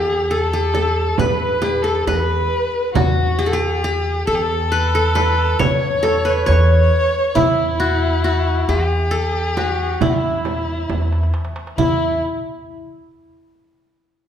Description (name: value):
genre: Arabic maqam ensemble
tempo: 136 BPM (eighths)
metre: 10/8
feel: straight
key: E maqam rast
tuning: A4 = 440 Hz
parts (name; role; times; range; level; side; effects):
- qanun; melody; 0.0-12.2 s; E4 to C#5; -20 LUFS; equal; none
- warm violin; second line; 0.0-12.2 s; E4 to C#5; -22 LUFS; left 2 dB; none
- upright bass; bass; 0.0-12.2 s; E2; -20 LUFS; equal; none
- frame drum; percussion; 0.7-12.2 s; none; -25 LUFS; right 4 dB; none
- darbuka; percussion; 2.9-12.2 s; none; -27 LUFS; right 2 dB; none
room: wet recital hall reverb, RT60 1.6 s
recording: recorded in a church or concert hall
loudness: -16 LUFS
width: side -9 dB against mid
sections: 0.0-11.8 A section; 11.8-14.3 B section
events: drum fill 10.9-11.8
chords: none